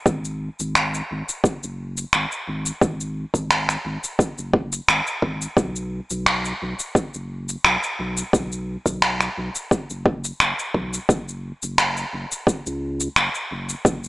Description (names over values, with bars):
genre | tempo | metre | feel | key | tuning
sunset chillout | 87 BPM | 4/4 | straight | unclear | A4 = 441 Hz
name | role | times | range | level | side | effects
warm sub bass | bass | 0.1-14.1 s | F#1 to C#2 | -30 LUFS | equal | none
electronic cabasa and finger snaps | drums | 0.1-14.1 s | none | -22 LUFS | equal | small room ambience
electronic kick drum | drums | 0.1-14.0 s | none | -23 LUFS | equal | small room ambience
room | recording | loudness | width
light reverb | small speaker sound | -20 LUFS | side -19 dB against mid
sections
0.0-14.1 A section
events
none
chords
none